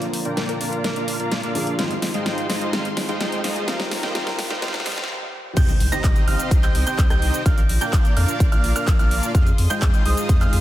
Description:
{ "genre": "EDM, festival progressive house", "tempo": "127 BPM", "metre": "4/4", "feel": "straight", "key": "C minor", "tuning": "A4 = 436 Hz", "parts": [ { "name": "felt-muted upright piano", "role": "accompaniment", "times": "0.0-5.6 s", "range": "D3 to Ab4", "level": "-30 LUFS", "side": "equal", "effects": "sidechain pumping, digital delay" }, { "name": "dark studio string section", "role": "sustained chords", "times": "0.0-10.6 s", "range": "Eb4 to Eb6", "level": "-33 LUFS", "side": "left 1 dB", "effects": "sidechain pumping" }, { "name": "dense compressed supersaw", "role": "riff", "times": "0.0-10.6 s", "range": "G3 to Bb5", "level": "-26 LUFS", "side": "equal", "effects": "sidechain pumping, low-pass filter, digital delay" }, { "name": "saturated sub bass", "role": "bass", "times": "0.0-10.6 s", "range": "G1 to F2", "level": "-24 LUFS", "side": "equal", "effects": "none" }, { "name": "big-room dance drum kit", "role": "drums", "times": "0.0-10.6 s", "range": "crash cymbal, handclaps, hi-hat, rim click, shaker, snare drum", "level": "-27 LUFS", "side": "equal", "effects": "none" }, { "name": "riser and impact", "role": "sound effects", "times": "0.7-7.5 s", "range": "none", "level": "-34 LUFS", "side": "equal", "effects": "none" }, { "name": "hollow square pluck", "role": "melody", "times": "0.4-1.2 s", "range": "Bb4", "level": "-34 LUFS", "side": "left 2 dB", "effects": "none" }, { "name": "dark grand piano", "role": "arpeggios", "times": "5.6-10.6 s", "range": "Eb6 to Bb6", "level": "-27 LUFS", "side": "right 4 dB", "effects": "sidechain pumping, digital delay" }, { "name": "electronic kick drum", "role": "drums", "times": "5.6-10.4 s", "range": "none", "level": "-18 LUFS", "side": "equal", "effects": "none" } ], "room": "light reverb", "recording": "dense, heavily limited modern master, high-pass filter", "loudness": "-18 LUFS", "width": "side -14 dB against mid", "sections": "0.0-5.6 A section; 5.6-10.6 B section", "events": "build-up 0.0-5.6; drum fill 0.0-5.1; filter sweep on supersaw synth 0.0-5.6; filter sweep 0.0-5.6; stop 5.1-5.6; drop 5.6-10.6; impact 5.6-7.5", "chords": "0.0 Bb; 1.8 Fm7; 3.7 Eb; 5.6 Cm; 7.5 Bb; 9.3 Fm7", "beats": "0.37 0.84 1.32 | 1.79 2.26 2.73 3.21 | 3.68 4.15 4.62 5.09 | 5.57 6.04 6.51 6.99 | 7.46 7.93 8.40 8.88 | 9.35 9.82 10.29" }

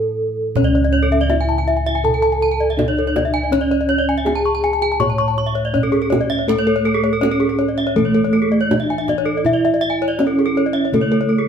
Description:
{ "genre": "Balinese gamelan", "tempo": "81 BPM", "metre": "4/4", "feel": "straight", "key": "C# pelog", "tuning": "A4 = 440 Hz", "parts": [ { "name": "gamelan-type bronze metallophone", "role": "melody", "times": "0.0-11.5 s", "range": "A3 to C#5", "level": "-19 LUFS", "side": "right 2 dB", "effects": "none" }, { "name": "gamelan-type bossed gongs", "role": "bass", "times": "0.0-11.5 s", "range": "C#2 to A4", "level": "-23 LUFS", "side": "left 1 dB", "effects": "none" }, { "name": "gamelan-type bronze metallophone", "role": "arpeggios", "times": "0.6-11.3 s", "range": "G#4 to C#6", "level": "-21 LUFS", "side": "left 6 dB", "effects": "none" }, { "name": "gamelan-type bronze metallophone", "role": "arpeggios", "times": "0.6-11.5 s", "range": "G#4 to C#6", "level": "-23 LUFS", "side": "right 4 dB", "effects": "none" }, { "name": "kendang", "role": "percussion", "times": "0.6-11.4 s", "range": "none", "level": "-25 LUFS", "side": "right 1 dB", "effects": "none" } ], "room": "moderate stone room reverb, RT60 1.1 s", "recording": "band playing live in one room", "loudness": "-15 LUFS", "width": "side -7 dB against mid", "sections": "0.6-11.5 A section", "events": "break 0.0-0.6; drum fill 0.0-0.6", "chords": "none", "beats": "| 0.56 1.30 2.04 2.78 | 3.52 4.26 5.00 5.74 | 6.48 7.22 7.96 8.70 | 9.45 10.19 10.93" }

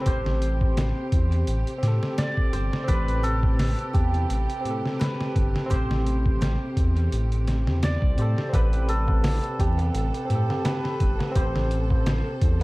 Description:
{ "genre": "trip hop", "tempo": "85 BPM", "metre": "4/4", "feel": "swing 55% on 16ths", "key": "A minor", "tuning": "A4 = 440 Hz", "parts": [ { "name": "hammered dulcimer", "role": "melody", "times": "0.0-12.6 s", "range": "G4 to D5", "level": "-32 LUFS", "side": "right 1 dB", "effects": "dub echo" }, { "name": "barky tine electric piano", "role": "accompaniment", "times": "0.0-12.6 s", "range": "C4 to C5", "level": "-32 LUFS", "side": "equal", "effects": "overdrive, tremolo, dub echo" }, { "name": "clear studio string section", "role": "sustained chords", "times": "0.0-12.6 s", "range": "C3 to A4", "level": "-36 LUFS", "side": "equal", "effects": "none" }, { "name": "dark detuned saw bass", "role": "bass", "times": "0.1-12.6 s", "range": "G1 to A2", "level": "-24 LUFS", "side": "equal", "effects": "none" }, { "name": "trip hop sampler-style drum kit", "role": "drums", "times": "0.1-12.6 s", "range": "hi-hat, kick drum, snare drum", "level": "-25 LUFS", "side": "equal", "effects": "none" }, { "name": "tabla", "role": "percussion", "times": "8.5-12.6 s", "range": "none", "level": "-38 LUFS", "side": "left 1 dB", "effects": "none" } ], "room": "small room ambience", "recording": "echo-heavy mix, vinyl crackle", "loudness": "-21 LUFS", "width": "side -21 dB against mid", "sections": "0.0-12.6 A section", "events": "none", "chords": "0.0 Am9", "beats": "| 0.06 0.76 1.47 2.18 | 2.88 3.59 4.29 5.00 | 5.71 6.41 7.12 7.82 | 8.53 9.23 9.94 10.65 | 11.35 12.06" }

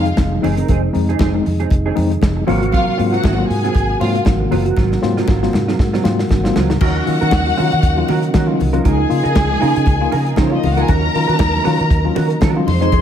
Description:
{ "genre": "disco", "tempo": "118 BPM", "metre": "4/4", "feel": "swing 56% on 16ths", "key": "Eb dorian", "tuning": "A4 = 440 Hz", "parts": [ { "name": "warm studio string section", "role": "second line", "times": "0.0-13.0 s", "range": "C4 to C6", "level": "-21 LUFS", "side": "left 2 dB", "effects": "none" }, { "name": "tine electric piano", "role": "accompaniment", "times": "0.0-13.0 s", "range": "Ab2 to F4", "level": "-22 LUFS", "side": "left 6 dB", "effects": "overdrive, fast stereo tremolo" }, { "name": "percussive tonewheel organ", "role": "sustained chords", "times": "0.0-13.0 s", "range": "C3 to Gb4", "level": "-23 LUFS", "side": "right 2 dB", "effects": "chorus vibrato, fast rotary speaker" }, { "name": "vintage muted fingered electric bass", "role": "bass", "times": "0.0-13.0 s", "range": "F1 to Eb3", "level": "-19 LUFS", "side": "equal", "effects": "none" }, { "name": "mellow electric guitar", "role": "accompaniment", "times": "0.1-13.0 s", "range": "Gb3 to C5", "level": "-23 LUFS", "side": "right 10 dB", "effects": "analog chorus" }, { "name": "warm soul drum kit", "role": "drums", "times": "0.1-13.0 s", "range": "crash cymbal, hi-hat, kick drum, snare drum", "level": "-18 LUFS", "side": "equal", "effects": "gated reverb" }, { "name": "congas", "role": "percussion", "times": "0.2-13.0 s", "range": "none", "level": "-27 LUFS", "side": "left 8 dB", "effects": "none" } ], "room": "studio reverb", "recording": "none", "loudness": "-13 LUFS", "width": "side -9 dB against mid", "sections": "0.0-6.8 A section; 6.8-13.0 B section", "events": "drum fill 4.8-6.8", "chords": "0.0 Fm7; 2.5 Ab13; 6.8 Ebm7; 8.9 Db69; 10.9 Ebm7", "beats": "0.18 | 0.69 1.20 1.71 2.22 | 2.73 3.24 3.75 4.26 | 4.77 5.28 5.79 6.30 | 6.81 7.32 7.83 8.34 | 8.85 9.36 9.87 10.38 | 10.89 11.40 11.91 12.42 | 12.93" }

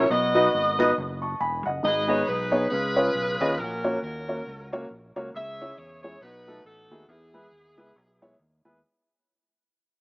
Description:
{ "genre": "uptempo gospel", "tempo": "137 BPM", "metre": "4/4", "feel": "swing 58% on 8ths", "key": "E major", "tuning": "A4 = 437 Hz", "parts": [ { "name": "clear saxophone section", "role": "melody", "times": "0.0-8.4 s", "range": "B3 to E5", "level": "-26 LUFS", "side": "equal", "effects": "none" }, { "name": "dark upright piano", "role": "accompaniment", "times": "0.0-8.8 s", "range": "G#2 to C#6", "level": "-25 LUFS", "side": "equal", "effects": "none" }, { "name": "fingered electric bass", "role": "bass", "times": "0.0-8.8 s", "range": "E1 to E2", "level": "-35 LUFS", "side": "equal", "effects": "none" } ], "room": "moderate echo chamber reverb, RT60 2.6 s", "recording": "small speaker sound", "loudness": "-22 LUFS", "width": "side -31 dB against mid", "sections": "0.0-8.8 A section", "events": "fade-out 0.0-8.8", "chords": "0.1 B; 1.8 G#m; 2.7 C#7; 3.6 F#/A#; 5.3 C#m; 6.2 B7; 7.1 E", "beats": "| 0.10 0.53 0.97 1.41 | 1.84 2.28 2.72 3.15 | 3.59 4.03 4.46 4.90 | 5.34 5.78 6.21 6.65 | 7.08 7.52 7.96 8.39" }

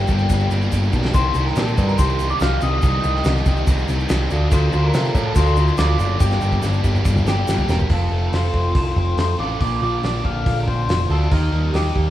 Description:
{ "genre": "indie rock", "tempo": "142 BPM", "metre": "4/4", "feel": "straight", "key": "G minor", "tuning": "A4 = 440 Hz", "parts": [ { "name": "electric guitar through a small old amp", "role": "melody", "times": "0.0-12.1 s", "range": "G4 to G5", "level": "-26 LUFS", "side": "left 2 dB", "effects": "phaser" }, { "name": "biting overdriven guitar", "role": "riff", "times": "0.0-12.1 s", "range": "F2 to F4", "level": "-28 LUFS", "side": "left 7 dB", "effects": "none" }, { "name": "overdriven semi-hollow guitar", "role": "riff", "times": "0.0-12.1 s", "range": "G2 to G4", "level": "-26 LUFS", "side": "right 5 dB", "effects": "analog chorus, tape echo" }, { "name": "growling picked electric bass", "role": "bass", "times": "0.0-12.1 s", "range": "E1 to C3", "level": "-19 LUFS", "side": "equal", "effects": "overdrive" }, { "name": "cloth-damped thuddy drum kit", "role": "drums", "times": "0.1-12.1 s", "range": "crash cymbal, hi-hat, kick drum, snare drum, toms", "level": "-22 LUFS", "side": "equal", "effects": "none" }, { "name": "tube shaker", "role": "percussion", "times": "0.1-7.8 s", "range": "none", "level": "-42 LUFS", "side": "left 4 dB", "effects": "none" } ], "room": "small room reverb", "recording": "rough home demo mix, small room ambience", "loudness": "-16 LUFS", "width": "side -13 dB against mid", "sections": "0.0-7.9 A section; 7.9-12.1 B section", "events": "drum fill 0.7-1.1, 6.2-7.9", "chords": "0.0 Gm; 1.1 Cm; 4.3 Dm; 6.2 Gm; 7.9 F; 9.6 Bbadd9; 11.3 Eb", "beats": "0.30 0.72 | 1.15 1.57 1.99 2.41 | 2.83 3.26 3.68 4.10 | 4.52 4.94 5.37 5.79 | 6.21 6.63 7.06 7.48 | 7.91 8.33 8.76 9.18 | 9.61 10.03 10.46 10.89 | 11.31 11.74" }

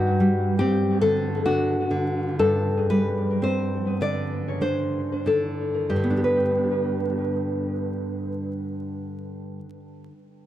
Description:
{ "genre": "romantic duo for nylon-string guitar and classical guitar", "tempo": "29-49 BPM (dotted quarters)", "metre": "12/8", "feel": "rubato", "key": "G major", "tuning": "A4 = 440 Hz", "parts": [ { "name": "nylon-string guitar", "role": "melody", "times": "0.0-9.6 s", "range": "F#4 to D5", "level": "-25 LUFS", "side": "left 3 dB", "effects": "analog delay" }, { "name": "nylon-string guitar", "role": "accompaniment", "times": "0.0-9.9 s", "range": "G2 to B4", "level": "-24 LUFS", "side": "right 1 dB", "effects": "analog delay" } ], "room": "moderate spring reverb, RT60 1.4 s, small room ambience", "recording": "echo-heavy mix, vinyl crackle", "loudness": "-22 LUFS", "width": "side -12 dB against mid", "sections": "0.0-5.9 A section; 5.9-10.5 B section", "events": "slowing down 0.0-5.9", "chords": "0.0 D7/G; 5.9 G", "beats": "1.02 2.40 4.00 | 5.91 7.76 9.63" }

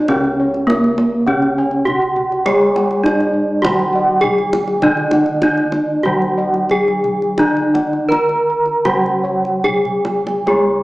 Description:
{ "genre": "Javanese gamelan", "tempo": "70-102 BPM", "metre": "4/4", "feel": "straight", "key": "C# pelog barang", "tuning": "A4 = 440 Hz", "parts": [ { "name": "gamelan-type bronze metallophone", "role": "melody", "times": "0.0-10.8 s", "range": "A#3+20c to A#4+20c", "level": "-16 LUFS", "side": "equal", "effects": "none" }, { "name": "gamelan-type bronze metallophone", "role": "accompaniment", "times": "0.0-10.8 s", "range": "C#3 to G#3-40c", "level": "-22 LUFS", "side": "left 1 dB", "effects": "none" }, { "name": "gamelan-type bronze metallophone", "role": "arpeggios", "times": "0.0-10.8 s", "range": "A#4+20c to A#5+20c", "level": "-21 LUFS", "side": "right 2 dB", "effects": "none" }, { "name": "gamelan-type bossed gongs", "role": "bass", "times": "0.0-10.8 s", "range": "C#2 to G#4-40c", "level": "-22 LUFS", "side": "equal", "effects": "none" }, { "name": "gamelan-type bossed gongs", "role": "arpeggios", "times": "0.1-10.8 s", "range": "A#4+20c to A#5+20c", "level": "-26 LUFS", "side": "left 1 dB", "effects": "none" }, { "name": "kendang", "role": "percussion", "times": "0.1-10.7 s", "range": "none", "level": "-26 LUFS", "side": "right 1 dB", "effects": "none" } ], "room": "moderate recital hall reverb, RT60 1.4 s", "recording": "small speaker sound", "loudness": "-13 LUFS", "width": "side -19 dB against mid", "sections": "0.1-10.5 A section", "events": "drum fill 9.6-10.5", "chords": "none", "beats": "| 0.09 0.68 1.27 1.86 | 2.46 3.05 3.64 4.23 | 4.82 5.42 6.05 6.71 | 7.39 8.10 8.85 9.64 | 10.46" }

